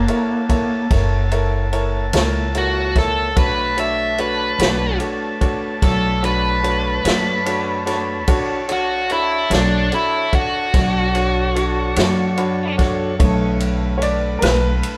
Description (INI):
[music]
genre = slow blues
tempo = 49 BPM (dotted quarters)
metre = 12/8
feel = straight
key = B minor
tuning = A4 = 440 Hz
[part]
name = biting overdriven guitar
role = melody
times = 0.0-12.8 s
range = A#3 to E5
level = -22 LUFS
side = equal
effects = none
[part]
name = tonewheel organ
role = sustained chords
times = 0.0-15.0 s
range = A3 to A5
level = -33 LUFS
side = equal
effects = slow rotary speaker
[part]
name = warm horn section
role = sustained chords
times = 0.0-15.0 s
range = D4 to A5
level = -32 LUFS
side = equal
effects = none
[part]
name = upright bass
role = bass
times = 0.0-14.8 s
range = F#1 to F#2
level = -24 LUFS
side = equal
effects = none
[part]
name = bright upright piano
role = accompaniment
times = 0.1-15.0 s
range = D3 to B5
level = -26 LUFS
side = equal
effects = none
[part]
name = vintage drum kit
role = drums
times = 0.1-15.0 s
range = kick drum, ride cymbal, snare drum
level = -24 LUFS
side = equal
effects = none
[sound]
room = light reverb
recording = band playing live in one room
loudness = -18 LUFS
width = mono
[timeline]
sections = 0.0-13.2 A section; 13.2-15.0 A section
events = overdriven electric guitar solo 0.0-13.2; upright piano fill 12.0-13.2; upright piano solo 13.2-15.0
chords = 0.0 F#7#9; 3.4 Bm9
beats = 0.90 2.13 | 3.36 4.59 5.82 7.05 | 8.28 9.51 10.73 11.96 | 13.19 14.42